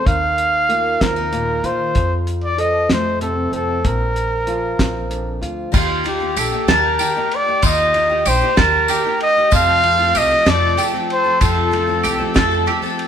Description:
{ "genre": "indie folk with a building arrangement", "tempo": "63 BPM (dotted quarters)", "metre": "6/8", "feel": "straight", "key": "unclear", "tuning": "A4 = 436 Hz", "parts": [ { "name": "mellow trumpet", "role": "melody", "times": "0.0-12.6 s", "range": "G4 to F5", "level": "-17 LUFS", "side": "equal", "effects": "none" }, { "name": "fingerpicked old ladder-braced acoustic guitar", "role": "accompaniment", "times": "0.0-5.7 s", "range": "F2 to A4", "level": "-24 LUFS", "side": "left 1 dB", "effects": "none" }, { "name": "upright bass", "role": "bass", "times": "0.0-12.7 s", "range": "Bb1 to Eb3", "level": "-24 LUFS", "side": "right 1 dB", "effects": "none" }, { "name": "cloth-damped thuddy drum kit", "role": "drums", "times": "0.1-13.1 s", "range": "crash cymbal, hi-hat, kick drum, ride cymbal, snare drum", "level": "-21 LUFS", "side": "equal", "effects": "none" }, { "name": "picked twelve-string acoustic guitar", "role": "accompaniment", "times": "5.7-13.1 s", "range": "F2 to A4", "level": "-23 LUFS", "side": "left 4 dB", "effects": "none" }, { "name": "bowl-back mandolin", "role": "arpeggios", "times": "5.7-13.1 s", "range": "F4 to A5", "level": "-21 LUFS", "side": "right 4 dB", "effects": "none" }, { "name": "tambourine", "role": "percussion", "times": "5.7-12.9 s", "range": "none", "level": "-29 LUFS", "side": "left 6 dB", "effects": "none" } ], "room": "moderate large studio reverb, RT60 1.2 s", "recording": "band playing live in one room", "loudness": "-14 LUFS", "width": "side -8 dB against mid", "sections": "0.0-5.7 A section; 5.7-13.1 B section", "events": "none", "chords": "0.1 Ebsus2; 2.0 F; 3.8 Bbadd9; 5.7 Eb; 9.5 F" }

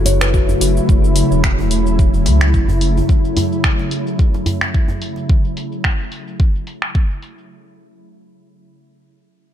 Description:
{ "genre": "organic downtempo", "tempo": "109 BPM", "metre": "4/4", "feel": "swing 55% on 16ths", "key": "F# minor", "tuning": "A4 = 440 Hz", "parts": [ { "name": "ethereal airy pad", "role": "sustained chords", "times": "0.0-5.2 s", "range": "C#3 to E4", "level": "-20 LUFS", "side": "equal", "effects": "ensemble chorus, built-in reverb, sidechain pumping" }, { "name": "warm sub bass", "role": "bass", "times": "0.0-3.0 s", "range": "E1 to C#2", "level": "-16 LUFS", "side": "equal", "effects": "sidechain pumping" }, { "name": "kalimba", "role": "arpeggios", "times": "0.1-0.7 s", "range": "F#4 to C#5", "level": "-24 LUFS", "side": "left 5 dB", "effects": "low-pass filter, digital delay" }, { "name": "deep house drum kit", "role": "drums", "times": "0.1-7.5 s", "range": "cabasa, finger snaps, hi-hat", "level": "-22 LUFS", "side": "equal", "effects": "low-pass filter on perc, low-pass filter on hats, low-pass filter on snare, low-pass filter on room" }, { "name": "djembe", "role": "percussion", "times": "0.1-5.3 s", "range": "none", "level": "-24 LUFS", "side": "right 1 dB", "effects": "none" }, { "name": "electronic kick drum", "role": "drums", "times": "0.3-7.1 s", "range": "none", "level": "-15 LUFS", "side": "equal", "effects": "none" } ], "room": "little or no reverb", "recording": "none", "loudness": "-14 LUFS", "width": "side -10 dB against mid", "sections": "0.0-7.5 A section", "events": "none", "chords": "0.0 F#m7" }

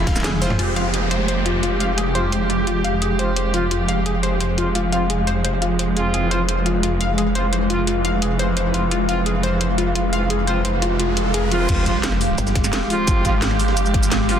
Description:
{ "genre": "dark technical drum and bass", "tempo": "173 BPM", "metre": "4/4", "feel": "straight", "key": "F harmonic minor", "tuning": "A4 = 440 Hz", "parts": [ { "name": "rich studio string section", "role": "sustained chords", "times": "0.0-14.4 s", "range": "E3 to G4", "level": "-25 LUFS", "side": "right 3 dB", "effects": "stereo widening, sidechain pumping" }, { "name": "snarling distorted saw bass", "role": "bass", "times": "0.0-14.4 s", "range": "F1 to Ab1", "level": "-22 LUFS", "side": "equal", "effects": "distortion, overdrive" }, { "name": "granular cloud pad", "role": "texture", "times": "0.0-14.4 s", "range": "Ab3 to Ab5", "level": "-25 LUFS", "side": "equal", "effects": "built-in reverb, sidechain pumping" }, { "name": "analog pluck", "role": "arpeggios", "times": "0.1-11.7 s", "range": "F4 to F5", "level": "-25 LUFS", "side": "left 4 dB", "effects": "chorus, sidechain pumping, digital delay" }, { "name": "breakbeat sampler-style drum kit", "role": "drums", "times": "0.1-0.6, 11.7-14.4 s", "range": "hi-hat, snare drum", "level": "-33 LUFS", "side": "equal", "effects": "none" }, { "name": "drum and bass drum kit", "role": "drums", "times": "0.1-14.4 s", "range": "cabasa, crash cymbal, hi-hat, ride cymbal, snare drum, toms", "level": "-26 LUFS", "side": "equal", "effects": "none" }, { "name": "electronic kick drum", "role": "drums", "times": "0.1, 11.7-14.0 s", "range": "none", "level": "-22 LUFS", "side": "equal", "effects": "none" }, { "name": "pulsing pluck wobble bass", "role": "bass", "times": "0.2-0.6, 12.4-12.7 s", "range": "F1 to G1", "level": "-23 LUFS", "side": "equal", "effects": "chorus" }, { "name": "mellow brass ensemble", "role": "stabs", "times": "0.4-14.4 s", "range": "F3 to F4", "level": "-27 LUFS", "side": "right 1 dB", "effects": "low-pass filter, digital delay" }, { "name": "downlifter, riser and sub drop", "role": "sound effects", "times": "0.6-3.4, 10.3-13.1 s", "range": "none", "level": "-28 LUFS", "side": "equal", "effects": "none" } ], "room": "moderate lush hall reverb, RT60 2.0 s", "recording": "dense, heavily limited modern master", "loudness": "-17 LUFS", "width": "side -8 dB against mid", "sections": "0.6-11.7 A section; 11.7-14.4 B section", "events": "drum fill 0.2-0.6; band accent 0.2; filter sweep on brass ensemble 0.6-11.7; riser 10.3-11.7; drop 11.7-14.4; impact 11.7-13.1", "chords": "0.0 Fm; 0.6 Fmadd9" }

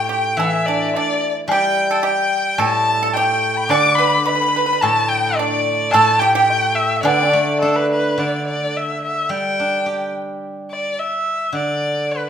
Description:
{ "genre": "chinese traditional, Chinese chamber ensemble", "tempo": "108 BPM", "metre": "2/4", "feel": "rubato", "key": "D zhi mode", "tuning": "A4 = 441 Hz", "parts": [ { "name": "clear erhu", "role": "melody", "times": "0.0-12.3 s", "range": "A4 to D6", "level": "-19 LUFS", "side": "left 2 dB", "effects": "none" }, { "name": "bright reedy dizi", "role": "second line", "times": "0.0-7.9 s", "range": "D5 to D6", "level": "-22 LUFS", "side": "left 6 dB", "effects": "none" }, { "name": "pipa", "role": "second line", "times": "0.0-7.9 s", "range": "D4 to D5", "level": "-21 LUFS", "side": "right 7 dB", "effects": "none" }, { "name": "steel-string zither", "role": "accompaniment", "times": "0.0-12.3 s", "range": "A2 to G4", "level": "-22 LUFS", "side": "right 1 dB", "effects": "none" }, { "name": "woodblock", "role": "percussion", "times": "0.4-7.7 s", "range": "none", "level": "-27 LUFS", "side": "left 3 dB", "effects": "none" } ], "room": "moderate recital hall reverb, RT60 1.4 s", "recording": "none", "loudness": "-15 LUFS", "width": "side -8 dB against mid", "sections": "0.0-8.2 A section; 8.2-12.3 B section", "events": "none", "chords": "none" }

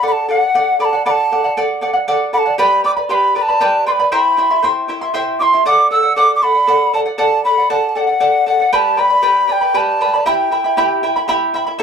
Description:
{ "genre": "andean folk", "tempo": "78 BPM (dotted quarters)", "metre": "6/8", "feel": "straight", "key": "unclear", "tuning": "A4 = 440 Hz", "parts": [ { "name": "large quena", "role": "melody", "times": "0.0-11.3 s", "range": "F#5 to E6", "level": "-14 LUFS", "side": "equal", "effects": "none" }, { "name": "charango", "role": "accompaniment", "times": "0.0-11.8 s", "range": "E4 to C6", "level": "-16 LUFS", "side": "right 1 dB", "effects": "none" } ], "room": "moderate studio reverb, RT60 0.5 s", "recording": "none", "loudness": "-12 LUFS", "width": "side -7 dB against mid", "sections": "0.0-11.8 A section", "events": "none", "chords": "0.0 D; 2.6 G; 4.1 C; 5.7 D; 8.7 G; 10.3 Em" }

